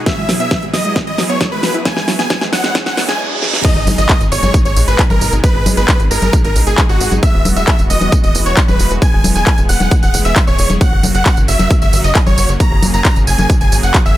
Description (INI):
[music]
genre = uplifting trance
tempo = 134 BPM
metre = 4/4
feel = straight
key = G# minor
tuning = A4 = 440 Hz
[part]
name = filtered supersaw swell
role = sustained chords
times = 0.0-14.2 s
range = B2 to G#4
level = -23 LUFS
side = equal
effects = sidechain pumping
[part]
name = wide unison pluck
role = arpeggios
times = 0.0-3.1 s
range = F#3 to G#4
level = -23 LUFS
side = right 2 dB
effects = cassette tape, sidechain pumping, dub echo
[part]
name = riser, reverse cymbal and impact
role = sound effects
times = 0.7-5.4 s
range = none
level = -24 LUFS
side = right 2 dB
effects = none
[part]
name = big supersaw lead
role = melody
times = 0.1-14.2 s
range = F#4 to A#5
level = -18 LUFS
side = equal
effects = sidechain pumping, tape echo
[part]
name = big-room dance drum kit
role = drums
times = 0.1-14.1 s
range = congas, crash cymbal, handclaps, hi-hat, snare drum, tambourine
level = -17 LUFS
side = equal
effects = none
[part]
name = electronic kick drum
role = drums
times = 0.1-14.0 s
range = none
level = -13 LUFS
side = equal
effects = none
[part]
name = tight sequencer bass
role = bass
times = 3.8-14.1 s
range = E1 to A#1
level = -17 LUFS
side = equal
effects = sidechain pumping
[sound]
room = digital ambience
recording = high-pass filter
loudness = -10 LUFS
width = side -14 dB against mid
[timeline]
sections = 0.0-3.6 A section; 3.6-14.2 B section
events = build-up 0.0-3.6; drum fill 0.0-3.2, 3.4; filter sweep on synth pluck 0.0-3.6; filter sweep 0.0-3.6; reverse cymbal 2.8-3.6; drop 3.6-14.2; impact 3.6-5.4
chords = 0.1 Eadd9; 3.6 G#m; 7.2 Eadd9; 10.8 F#